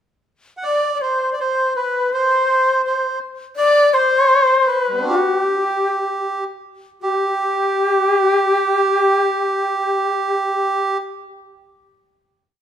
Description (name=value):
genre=japanese traditional, Japanese chamber music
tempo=52-85 BPM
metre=2/4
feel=rubato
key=G ryukyu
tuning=A4 = 440 Hz
part: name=breathy bright shakuhachi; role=melody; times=0.6-11.0 s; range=G4 to D5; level=-18 LUFS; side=left 4 dB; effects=none
part: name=melodica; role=second line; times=0.6-11.0 s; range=G3 to F#5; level=-19 LUFS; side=right 4 dB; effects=none
room=moderate recital hall reverb, RT60 1.7 s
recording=none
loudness=-15 LUFS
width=side -9 dB against mid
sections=0.0-0.6 pickup bar; 0.6-7.0 A section; 7.0-11.5 final note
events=slowing down 3.6-7.0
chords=none